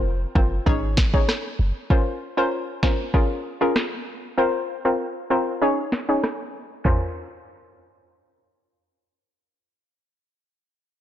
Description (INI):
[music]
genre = dancehall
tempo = 97 BPM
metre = 4/4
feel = straight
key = Bb minor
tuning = A4 = 441 Hz
[part]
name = hollow square pluck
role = accompaniment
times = 0.0-10.0 s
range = C4 to Db5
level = -23 LUFS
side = left 1 dB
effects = chorus, sidechain pumping
[part]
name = clean 808-style bass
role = bass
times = 0.0-1.7 s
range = F1 to Ab1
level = -24 LUFS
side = equal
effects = none
[part]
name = afro-pop drum kit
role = drums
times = 0.4-7.0 s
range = handclaps, kick drum, rim click, snare drum, toms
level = -22 LUFS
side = equal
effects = none
[sound]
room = light reverb, digital ambience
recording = blown-out, overdriven recording, overdrive, low-pass filter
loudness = -20 LUFS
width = side -11 dB against mid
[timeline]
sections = 0.0-6.9 A section; 6.9-9.3 B section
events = filter sweep 0.0-6.9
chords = 0.0 Fsus4; 0.7 Absus4; 1.9 Bbmadd9; 3.1 Db6; 4.4 Fsus4; 5.6 Absus4; 6.9 Bbmadd9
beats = 0.05 0.67 1.28 | 1.90 2.52 3.14 3.76 | 4.38 5.00 5.62 6.23 | 6.85 7.47 8.09 8.71